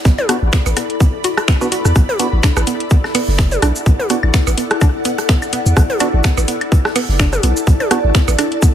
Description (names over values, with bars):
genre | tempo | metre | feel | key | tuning
minimal techno | 126 BPM | 4/4 | swing 56% on 16ths | B minor | A4 = 440 Hz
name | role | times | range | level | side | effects
big rock drum kit | drums | 0.0-8.7 s | hi-hat, shaker, snare drum | -30 LUFS | right 2 dB | sidechain pumping on hats, high-pass filter on hats, high-pass filter on snare, sidechain pumping on perc, high-pass filter on perc, high-pass filter on room
ethereal airy pad | texture | 0.0-8.7 s | E4 to B5 | -22 LUFS | left 1 dB | ensemble chorus, built-in reverb, phaser, sidechain pumping
hollow square pluck | riff | 0.1-8.7 s | B3 to F#4 | -23 LUFS | right 2 dB | chorus, sidechain pumping, ping-pong delay
punchy sub bass | bass | 0.1-8.4 s | F#1 to E2 | -16 LUFS | equal | sidechain pumping
electronic kick drum | drums | 0.1-8.7 s | none | -13 LUFS | equal | none
minimal click drum kit | percussion | 0.2-8.5 s | claves, percussion blips, rim click, toms | -20 LUFS | right 1 dB | ping-pong delay
percussive organ stab | stabs | 0.3-8.0 s | B3 to F#4 | -24 LUFS | right 1 dB | chorus, ping-pong delay
booming analog drum machine | drums | 0.3-8.7 s | finger snaps, hi-hat, shaker | -20 LUFS | left 1 dB | none
room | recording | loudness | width
little or no reverb | none | -12 LUFS | side -10 dB against mid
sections
0.0-8.7 A section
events
none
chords
0.0 Bm